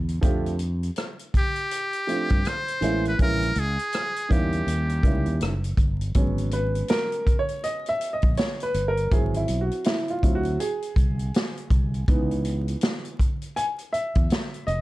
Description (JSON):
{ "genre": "hip hop, jazz-hop", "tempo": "81 BPM", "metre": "4/4", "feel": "swing 61% on 16ths", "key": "G# minor", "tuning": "A4 = 440 Hz", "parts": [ { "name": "fretless electric bass", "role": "bass", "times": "0.0-14.8 s", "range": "E#1 to G2", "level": "-26 LUFS", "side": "equal", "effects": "none" }, { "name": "vintage drum kit", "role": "drums", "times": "0.1-14.8 s", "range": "hi-hat, kick drum, rim click, snare drum", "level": "-24 LUFS", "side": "equal", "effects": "none" }, { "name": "warm upright piano", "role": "accompaniment", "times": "0.2-14.8 s", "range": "D#3 to G#5", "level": "-27 LUFS", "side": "right 1 dB", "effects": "plate reverb" }, { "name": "trumpet with metal mute", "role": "melody", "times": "1.4-5.4 s", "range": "G4 to C5", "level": "-27 LUFS", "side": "equal", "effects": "none" } ], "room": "light reverb", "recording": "dark, warm production, vinyl crackle", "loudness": "-22 LUFS", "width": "side -18 dB against mid", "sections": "0.0-6.2 A section; 6.2-14.8 B section", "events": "upright piano solo 6.2-14.8", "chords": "0.2 F69; 3.2 A#m7b5; 4.7 D#7b9; 6.2 G#m11; 9.1 G#7b13; 12.1 C#m7", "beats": "| 0.23 0.97 1.71 2.45 | 3.19 3.94 4.68 5.42 | 6.16 6.90 7.64 8.38 | 9.12 9.86 10.60 11.34 | 12.08 12.82 13.56 14.30" }